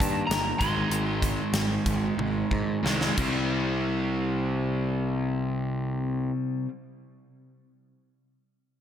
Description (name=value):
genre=hard rock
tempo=86-99 BPM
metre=4/4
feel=straight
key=unclear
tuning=A4 = 440 Hz
part: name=lightly driven lead guitar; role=melody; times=0.0-2.8 s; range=A5 to C6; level=-32 LUFS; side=equal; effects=wide subtle chorus, digital delay
part: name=crunchy overdriven guitar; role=riff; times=0.0-6.7 s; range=Ab2 to Eb4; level=-28 LUFS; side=equal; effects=none
part: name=fuzz picked electric bass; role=bass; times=0.0-6.3 s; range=G1 to Ab2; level=-30 LUFS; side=equal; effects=overdrive
part: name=gated 80s drum kit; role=drums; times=0.0-3.3 s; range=crash cymbal, hi-hat, kick drum, snare drum, toms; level=-30 LUFS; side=equal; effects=none
room=moderate lush hall reverb, RT60 2.7 s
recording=bright 1980s-style digital production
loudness=-25 LUFS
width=side -9 dB against mid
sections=0.0-3.5 A section; 3.5-6.3 B section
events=slowing down 0.0-3.5; drum fill 2.2-3.5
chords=0.0 Eb; 0.6 Ab; 3.2 C5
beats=0.29 | 0.90 1.53 2.17 2.83 | 3.52 4.21 4.91 5.60